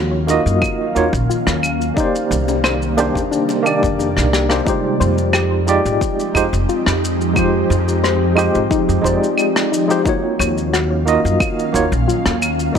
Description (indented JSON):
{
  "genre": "sunset chillout",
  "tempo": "89 BPM",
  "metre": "4/4",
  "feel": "straight",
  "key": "F dorian",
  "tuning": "A4 = 441 Hz",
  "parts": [
    { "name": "tine electric piano", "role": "accompaniment", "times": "0.0-12.8 s", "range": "Ab3 to Eb5", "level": "-19 LUFS", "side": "right 1 dB", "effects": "medium tremolo, auto-pan, tape echo" },
    { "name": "ethereal airy pad", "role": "sustained chords", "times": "0.0-12.8 s", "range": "C3 to F5", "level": "-22 LUFS", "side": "equal", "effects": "ensemble chorus, built-in reverb" },
    { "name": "soft round pluck", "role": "arpeggios", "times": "0.0-12.8 s", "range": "D4 to Eb5", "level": "-24 LUFS", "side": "left 3 dB", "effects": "chorus, tape echo" },
    { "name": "upright bass", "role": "bass", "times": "0.0-12.7 s", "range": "F1 to Ab2", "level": "-20 LUFS", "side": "equal", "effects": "none" },
    { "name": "shaker, claves and rim click", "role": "drums", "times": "0.3-12.8 s", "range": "none", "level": "-22 LUFS", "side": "equal", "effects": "none" },
    { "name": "bongos", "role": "percussion", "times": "0.3-4.1 s", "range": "none", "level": "-30 LUFS", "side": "left 6 dB", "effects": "none" },
    { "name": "electronic kick drum", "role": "drums", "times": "0.6-12.8 s", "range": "none", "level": "-22 LUFS", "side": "equal", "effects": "none" }
  ],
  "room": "light reverb, small room reverb",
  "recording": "none",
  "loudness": "-14 LUFS",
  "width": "side -7 dB against mid",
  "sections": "0.0-4.7 A section; 4.7-12.8 B section",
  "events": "filter sweep on tine electric piano 0.0-4.7; drum fill 4.2-4.7",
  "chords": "0.0 Ebm9; 2.0 Cm9; 4.7 Fm9; 10.1 Ebm9"
}